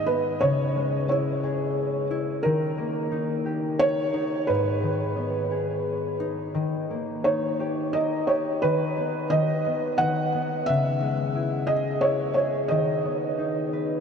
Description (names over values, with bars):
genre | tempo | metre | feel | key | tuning
children's music, lullaby | 88 BPM | 3/4 | rubato | G# minor | A4 = 440 Hz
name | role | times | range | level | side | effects
felt-muted upright piano | melody | 0.0-14.0 s | A#4 to F#5 | -25 LUFS | right 2 dB | ping-pong delay
concert harp | accompaniment | 0.0-14.0 s | G#2 to B4 | -26 LUFS | left 2 dB | none
room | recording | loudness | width
wet huge ambient reverb, RT60 8.2 s | dreamy mix soaked in reverb | -23 LUFS | side -6 dB against mid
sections
0.0-6.5 A section; 6.5-14.0 B section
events
none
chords
0.4 C#m; 2.4 D#; 4.5 G#m; 6.5 D#; 8.6 B/D#; 10.7 C#m; 12.7 B/D#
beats
| 0.41 1.09 1.77 | 2.44 3.12 3.80 | 4.47 5.16 5.85 | 6.55 7.25 7.94 | 8.63 9.32 10.00 | 10.68 11.36 12.03 | 12.71 13.38